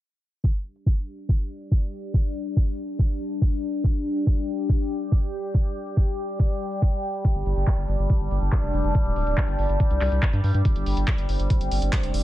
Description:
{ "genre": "psychedelic trance", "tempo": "141 BPM", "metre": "4/4", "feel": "straight", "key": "unclear", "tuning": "A4 = 440 Hz", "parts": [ { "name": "overtone-sweeping drone", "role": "sustained chords", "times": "1.5-12.2 s", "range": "G3 to G4", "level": "-29 LUFS", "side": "left 2 dB", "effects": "chorus, built-in reverb, phaser, sidechain pumping" }, { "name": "drum and bass drum kit", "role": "drums", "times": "0.4-12.2 s", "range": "handclaps, hi-hat", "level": "-33 LUFS", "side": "equal", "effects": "overdrive" }, { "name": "electronic kick drum", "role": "drums", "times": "0.4-12.0 s", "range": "none", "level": "-21 LUFS", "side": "equal", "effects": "overdrive" }, { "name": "round analog bass", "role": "bass", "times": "7.4-12.2 s", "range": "D1 to G2", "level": "-24 LUFS", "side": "equal", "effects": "tube saturation" } ], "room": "little or no reverb", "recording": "low-pass filter", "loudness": "-22 LUFS", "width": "side -15 dB against mid", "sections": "0.4-12.2 A section", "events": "filter sweep 0.4-12.2", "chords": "0.4 G5", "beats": "| 0.44 0.86 1.29 1.72 | 2.14 2.57 2.99 3.42 | 3.84 4.27 4.69 5.12 | 5.54 5.97 6.40 6.82 | 7.25 7.67 8.10 8.52 | 8.95 9.37 9.80 10.22 | 10.65 11.08 11.50 11.93" }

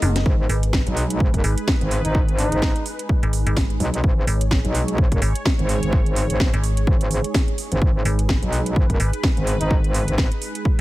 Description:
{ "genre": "bass house", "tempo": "127 BPM", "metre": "4/4", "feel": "swing 57% on 16ths", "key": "G# minor", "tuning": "A4 = 440 Hz", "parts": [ { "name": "sweeping resonant pad", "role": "sustained chords", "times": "0.0-10.8 s", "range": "G#3 to D#5", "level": "-30 LUFS", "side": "right 2 dB", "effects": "chorus, sidechain pumping" }, { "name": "metallic FM bass", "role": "bass", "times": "0.0-10.8 s", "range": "F#1 to G#1", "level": "-20 LUFS", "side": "equal", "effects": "tube saturation, sidechain pumping" }, { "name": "house drum kit", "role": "drums", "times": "0.0-10.6 s", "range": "hi-hat, snare drum, toms", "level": "-27 LUFS", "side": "equal", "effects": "none" }, { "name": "metallic wobble bass", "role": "bass", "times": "0.3-10.3 s", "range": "F#1 to B1", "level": "-22 LUFS", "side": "equal", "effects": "chorus, overdrive, sidechain pumping" }, { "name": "electronic kick drum", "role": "drums", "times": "0.3-10.8 s", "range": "none", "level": "-20 LUFS", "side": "equal", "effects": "none" }, { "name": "trumpet with bucket mute", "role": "melody", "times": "2.0-2.9, 9.6-9.8 s", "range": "D#4", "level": "-28 LUFS", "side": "equal", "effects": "ping-pong delay" } ], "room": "little or no reverb", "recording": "none", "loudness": "-18 LUFS", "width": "side -17 dB against mid", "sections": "0.0-10.8 A section", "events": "break 0.0; drum fill 0.0", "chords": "0.0 G#m", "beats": "| 0.26 0.73 1.20 1.68 | 2.15 2.62 3.09 3.56 | 4.04 4.51 4.98 5.46 | 5.93 6.40 6.87 7.34 | 7.82 8.29 8.76 9.23 | 9.71 10.18 10.65" }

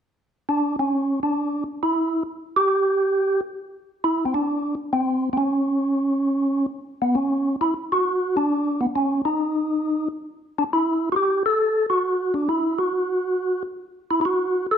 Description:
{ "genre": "jazz", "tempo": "135 BPM", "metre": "4/4", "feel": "swing 67% on 8ths", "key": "unclear", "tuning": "A4 = 436 Hz", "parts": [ { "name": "percussive tonewheel organ", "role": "solo", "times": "0.5-14.8 s", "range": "B3 to A4", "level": "-20 LUFS", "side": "equal", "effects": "fast rotary speaker" } ], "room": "wet large studio reverb, RT60 1.3 s", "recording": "none", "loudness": "-20 LUFS", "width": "side -8 dB against mid", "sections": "0.0-7.1 A section; 7.1-14.8 B section", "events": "none", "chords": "none", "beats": "| 0.03 0.48 0.92 1.36 | 1.81 2.25 2.70 3.14 | 3.58 4.03 4.47 4.92 | 5.36 5.81 6.25 6.70 | 7.14 7.58 8.03 8.47 | 8.92 9.36 9.81 10.25 | 10.69 11.14 11.58 12.03 | 12.47 12.92 13.36 13.80 | 14.25 14.69" }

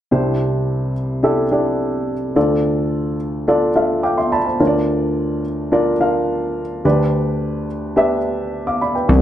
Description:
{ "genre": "pop", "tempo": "107 BPM", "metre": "4/4", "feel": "straight", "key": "C major", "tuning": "A4 = 440 Hz", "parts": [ { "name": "dark upright piano", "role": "accompaniment", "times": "0.1-9.2 s", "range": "C2 to D6", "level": "-16 LUFS", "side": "equal", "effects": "none" }, { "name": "chorused synth bass", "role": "bass", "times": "9.1-9.2 s", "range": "C2", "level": "-11 LUFS", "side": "equal", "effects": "none" } ], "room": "moderate large studio reverb, RT60 0.9 s, small room reverb", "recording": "nothing above 10.7 kHz", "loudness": "-16 LUFS", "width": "side -11 dB against mid", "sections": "0.1-9.1 A section", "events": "upright piano fill 3.5-4.6", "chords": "0.1 Cadd9; 2.4 Dm; 4.6 Bb/D; 6.8 G/D", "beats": "| 0.12 0.68 1.24 1.80 | 2.36 2.92 3.48 4.04 | 4.60 5.16 5.72 6.29 | 6.85 7.41 7.97 8.53 | 9.09" }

